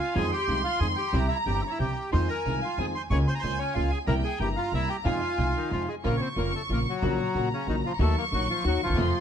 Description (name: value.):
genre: tango.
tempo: 184 BPM.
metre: 3/4.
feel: rubato.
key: F minor, Bb harmonic minor from 6.0 s.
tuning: A4 = 440 Hz.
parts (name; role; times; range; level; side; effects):
bandoneon; melody; 0.0-9.2 s; Db3 to Db6; -30 LUFS; equal; none.
warm chamber violin section; second line; 0.0-9.2 s; G5 to Db6; -32 LUFS; left 1 dB; none.
warm concert grand piano; accompaniment; 0.1-9.1 s; F1 to G4; -31 LUFS; equal; none.
warm studio string section; stabs; 0.2-9.1 s; G3 to Ab4; -39 LUFS; equal; none.
upright bass; bass; 0.2-9.1 s; F1 to F2; -28 LUFS; equal; none.
room: light reverb.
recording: close, detailed microphones.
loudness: -24 LUFS.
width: side -8 dB against mid.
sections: 0.0-6.0 A section; 6.0-9.2 B section.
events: none.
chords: 0.2 Fm7; 1.1 C; 2.1 Fm7; 3.1 Bbm7/Db; 4.1 C7; 5.0 Fm7; 6.0 Bbm; 7.0 Gb/Bb; 8.0 Ebm.